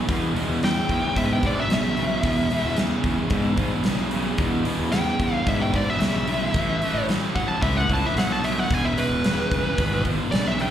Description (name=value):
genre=blues rock power trio and southern rock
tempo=111 BPM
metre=4/4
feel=straight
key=E major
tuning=A4 = 436 Hz
part: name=sludgy distorted guitar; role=riff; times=0.0-10.7 s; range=E2 to F#3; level=-25 LUFS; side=equal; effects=overdrive, slapback echo
part: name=fuzz fingered electric bass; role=bass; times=0.1-10.7 s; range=E1 to G#2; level=-26 LUFS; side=equal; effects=overdrive
part: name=huge arena drum kit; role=drums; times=0.1-10.7 s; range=hi-hat, kick drum, snare drum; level=-27 LUFS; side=equal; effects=none
part: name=fuzz lead guitar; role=melody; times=0.6-10.7 s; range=B4 to A5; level=-26 LUFS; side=equal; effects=distortion, slapback echo
room=light reverb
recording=live gig heard through the venue's PA, club reverb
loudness=-20 LUFS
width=side -10 dB against mid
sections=0.0-10.7 A section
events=none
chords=0.0 E; 6.5 A; 8.7 E